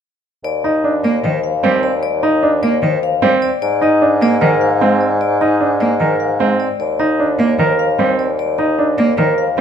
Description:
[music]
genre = classical, minimalist pattern music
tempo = 151 BPM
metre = 4/4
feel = straight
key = unclear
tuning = A4 = 440 Hz
[part]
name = vibraphone with medium hard mallets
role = melody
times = 0.4-9.6 s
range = C5 to F5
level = -19 LUFS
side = left 8 dB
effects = none
[part]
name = warm bassoon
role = bass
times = 0.4-9.6 s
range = Eb2 to Ab2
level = -19 LUFS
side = equal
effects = none
[part]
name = clear concert grand piano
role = arpeggios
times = 0.6-9.6 s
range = C4 to Bb4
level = -17 LUFS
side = right 4 dB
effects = none
[part]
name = warm cello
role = accompaniment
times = 1.0-9.6 s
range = Eb3 to Bb3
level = -18 LUFS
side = right 2 dB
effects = none
[sound]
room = light reverb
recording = none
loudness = -13 LUFS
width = side -8 dB against mid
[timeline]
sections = 0.4-9.6 A section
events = none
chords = 0.4 Ebmaj7(no3); 3.6 Abadd9; 6.8 Ebmaj7(no3)

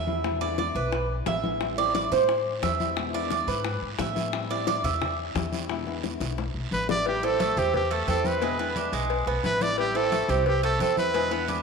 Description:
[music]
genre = latin, Cuban son and guajira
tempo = 176 BPM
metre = 4/4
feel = straight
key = A minor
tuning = A4 = 440 Hz
[part]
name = flamenco guitar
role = accompaniment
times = 0.0-11.6 s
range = B2 to E4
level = -34 LUFS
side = left 9 dB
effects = none
[part]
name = Cuban tres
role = arpeggios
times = 0.0-5.2, 7.2-11.6 s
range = G#3 to E5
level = -27 LUFS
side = right 5 dB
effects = none
[part]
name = upright bass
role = bass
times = 0.0-11.6 s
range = A1 to A2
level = -32 LUFS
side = left 1 dB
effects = none
[part]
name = congas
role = percussion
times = 0.1-11.6 s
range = none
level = -36 LUFS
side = left 2 dB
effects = none
[part]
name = bongos and cowbell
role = percussion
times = 0.2-11.6 s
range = none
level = -34 LUFS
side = left 10 dB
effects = none
[part]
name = guiro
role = percussion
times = 1.6-11.6 s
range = none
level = -41 LUFS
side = right 10 dB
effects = none
[part]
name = bright trumpet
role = melody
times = 6.7-11.6 s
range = G4 to D5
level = -27 LUFS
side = equal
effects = none
[sound]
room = wet echo chamber reverb, RT60 2.5 s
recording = 1960s-style stereo with parts hard left and right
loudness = -24 LUFS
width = side -5 dB against mid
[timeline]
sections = 0.0-7.1 A section; 7.1-11.6 B section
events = Cuban tres solo 0.0-7.1; drum fill 6.2-7.1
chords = 0.2 E7; 1.6 Am7; 3.0 E7; 4.3 Am7; 5.7 E7; 7.1 Am7; 8.4 E7; 9.8 Am7

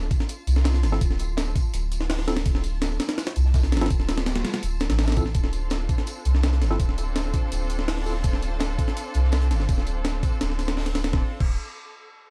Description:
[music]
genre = drum and bass, jungle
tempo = 166 BPM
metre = 4/4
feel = straight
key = D minor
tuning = A4 = 436 Hz
[part]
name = soft dub sub bass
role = bass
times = 0.0-11.6 s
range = D1 to C2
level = -26 LUFS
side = equal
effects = none
[part]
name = backwards swelling texture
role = texture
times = 0.0-11.1 s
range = F4 to A5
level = -44 LUFS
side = equal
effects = built-in reverb
[part]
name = breakbeat sampler-style drum kit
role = drums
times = 0.1-11.5 s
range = crash cymbal, hi-hat, kick drum, snare drum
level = -28 LUFS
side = equal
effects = none
[part]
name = crunchy breakbeat drum kit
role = drums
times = 0.1-11.0 s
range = hi-hat, snare drum, tambourine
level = -43 LUFS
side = equal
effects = high-pass filter on hats, high-pass filter on snare, high-pass filter on perc, high-pass filter on room
[part]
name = mellow tine electric piano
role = stabs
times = 0.9-8.1 s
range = C4 to A4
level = -36 LUFS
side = equal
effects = medium tremolo, dub echo
[part]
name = rich studio string section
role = sustained chords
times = 5.4-11.3 s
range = C4 to A4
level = -38 LUFS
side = equal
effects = none
[sound]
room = little or no reverb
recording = dark, warm production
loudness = -24 LUFS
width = mono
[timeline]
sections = 0.0-5.3 A section; 5.3-11.1 B section; 11.1-12.3 C section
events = drop 0.0-5.3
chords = 0.0 Dm7

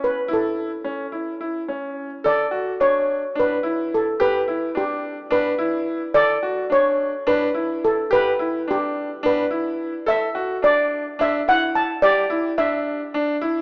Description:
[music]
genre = progressive instrumental, progressive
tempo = 214 BPM (eighths)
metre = 7/8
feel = straight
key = E dorian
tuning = A4 = 441 Hz
[part]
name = steel pan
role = melody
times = 0.0-13.4 s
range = G4 to A5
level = -20 LUFS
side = equal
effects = none
[part]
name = bright concert grand piano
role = arpeggios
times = 0.0-13.6 s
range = C#4 to A4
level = -24 LUFS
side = equal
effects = none
[sound]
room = moderate lush hall reverb, RT60 2.8 s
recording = rough home demo mix, small speaker sound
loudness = -18 LUFS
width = side -27 dB against mid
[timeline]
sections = 0.0-2.2 A section; 2.2-13.6 B section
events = none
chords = 0.0 A/C#; 2.2 Bm7; 4.2 Em7; 6.2 Bm7; 8.1 Em7; 10.1 Dadd9; 12.0 Em7

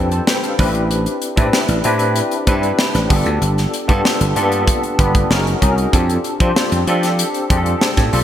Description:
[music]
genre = polished 1980s jazz-funk pop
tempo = 96 BPM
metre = 4/4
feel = straight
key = unclear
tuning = A4 = 440 Hz
[part]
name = barky tine electric piano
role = accompaniment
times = 0.0-8.2 s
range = Bb3 to A5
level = -18 LUFS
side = left 1 dB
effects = overdrive, fast tremolo, ensemble chorus
[part]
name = slap bass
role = bass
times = 0.0-8.2 s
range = F#1 to F3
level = -18 LUFS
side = right 1 dB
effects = none
[part]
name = crisp fusion drum kit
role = drums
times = 0.1-8.2 s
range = hi-hat, kick drum, snare drum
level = -18 LUFS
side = equal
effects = gated reverb
[sound]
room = light reverb, studio reverb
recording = bright 1980s-style digital production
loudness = -14 LUFS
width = side -10 dB against mid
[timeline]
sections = 0.0-8.2 A section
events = none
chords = 0.0 F6; 0.6 Am11; 3.1 G9; 5.3 F#6; 5.9 F6

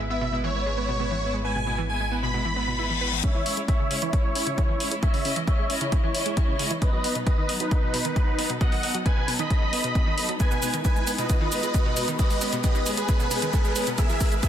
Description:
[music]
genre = uplifting trance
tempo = 134 BPM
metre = 4/4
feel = straight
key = C# minor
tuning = A4 = 441 Hz
[part]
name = muted studio string section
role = sustained chords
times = 0.0-14.5 s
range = F#3 to D#5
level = -33 LUFS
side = left 1 dB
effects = sidechain pumping
[part]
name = analog pluck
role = arpeggios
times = 0.0-14.5 s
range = B2 to B4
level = -33 LUFS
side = right 1 dB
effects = chorus, sidechain pumping, ping-pong delay
[part]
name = fat analog bass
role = bass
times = 0.0-3.2 s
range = G#1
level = -30 LUFS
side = equal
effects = sidechain pumping
[part]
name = dense compressed supersaw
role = melody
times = 0.1-14.5 s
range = D#4 to B5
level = -28 LUFS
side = right 1 dB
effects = sidechain pumping, low-pass filter, digital delay
[part]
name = reverse cymbal and riser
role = sound effects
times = 2.5-14.5 s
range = none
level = -35 LUFS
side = left 1 dB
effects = none
[part]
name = electronic hi-hat and shaker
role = drums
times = 3.2-14.5 s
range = none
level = -30 LUFS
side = equal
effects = low-pass filter on hats, low-pass filter on perc
[part]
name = electronic kick drum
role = drums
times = 3.2-14.5 s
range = none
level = -23 LUFS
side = equal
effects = none
[sound]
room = light reverb, digital ambience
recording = dense, heavily limited modern master, low-pass filter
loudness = -22 LUFS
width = side -10 dB against mid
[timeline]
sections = 0.0-3.2 A section; 3.2-14.5 B section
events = filter sweep on supersaw synth 0.0-3.2, 3.2-14.5; filter sweep 0.0-3.2; reverse cymbal 2.5-3.2; build-up 3.2-14.5; riser 3.2-14.5; filter sweep on synth pluck 3.2-14.5; drum fill 10.4-14.5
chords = 0.0 E/G#; 3.2 C#m; 6.8 B; 10.4 G#m; 14.0 E

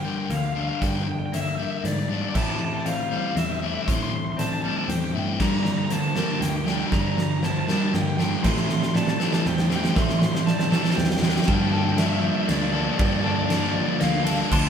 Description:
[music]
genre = post-rock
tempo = 118 BPM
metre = 3/4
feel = straight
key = G dorian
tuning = A4 = 440 Hz
[part]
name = raw garage guitar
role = melody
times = 0.0-14.7 s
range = D5 to C6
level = -30 LUFS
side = left 1 dB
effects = overdrive
[part]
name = pedal steel guitar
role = sustained chords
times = 0.0-14.7 s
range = C3 to C6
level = -37 LUFS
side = right 2 dB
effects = none
[part]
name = clean electric guitar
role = arpeggios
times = 0.0-14.7 s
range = G2 to A4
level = -32 LUFS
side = left 2 dB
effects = none
[part]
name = vibraphone with soft mallets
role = arpeggios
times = 0.0-11.2 s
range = Bb4 to E5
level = -38 LUFS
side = right 6 dB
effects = none
[part]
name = sludgy distorted guitar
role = riff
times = 0.0-14.7 s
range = G2 to D4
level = -28 LUFS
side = left 6 dB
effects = overdrive
[part]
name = picked electric bass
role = bass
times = 0.0-14.7 s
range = D2 to A2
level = -30 LUFS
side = equal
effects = none
[part]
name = huge arena drum kit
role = drums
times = 0.3-14.6 s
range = crash cymbal, hi-hat, kick drum, ride cymbal, snare drum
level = -25 LUFS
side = right 1 dB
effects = none
[part]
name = thick fuzz guitar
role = riff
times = 5.4-14.7 s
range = G2 to D4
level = -28 LUFS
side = right 7 dB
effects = distortion
[sound]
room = wet studio reverb, RT60 0.6 s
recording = band playing live in one room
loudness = -21 LUFS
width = side -8 dB against mid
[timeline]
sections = 0.0-11.5 A section; 11.5-14.7 B section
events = build-up 0.0-11.5; drum fill 0.0-11.5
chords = 0.0 Gm; 2.3 Am7; 5.4 Gm; 8.4 Am7; 11.5 Gm9

